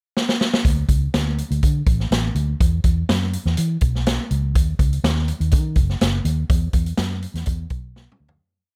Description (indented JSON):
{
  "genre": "uptempo 1960s-style soul",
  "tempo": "123 BPM",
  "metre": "4/4",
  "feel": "straight",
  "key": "unclear",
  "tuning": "A4 = 440 Hz",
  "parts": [
    { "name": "swinging big-band drum kit", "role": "drums", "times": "0.2-8.4 s", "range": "hi-hat, kick drum, snare drum, toms", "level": "-22 LUFS", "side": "equal", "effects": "none" },
    { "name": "vintage muted fingered electric bass", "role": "bass", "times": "0.6-8.4 s", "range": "F#1 to E3", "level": "-24 LUFS", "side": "equal", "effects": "none" }
  ],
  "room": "little or no reverb",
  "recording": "none",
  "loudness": "-20 LUFS",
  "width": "mono",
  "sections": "0.0-0.6 pickup bar; 0.6-8.4 pre-chorus",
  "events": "drum fill 0.2-0.6, 8.0-8.4; fade-out 6.5-8.4",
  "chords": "none",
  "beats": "0.16 | 0.65 1.14 1.63 2.12 | 2.60 3.09 3.58 4.06 | 4.55 5.04 5.52 6.01 | 6.50 6.98 7.47 7.96"
}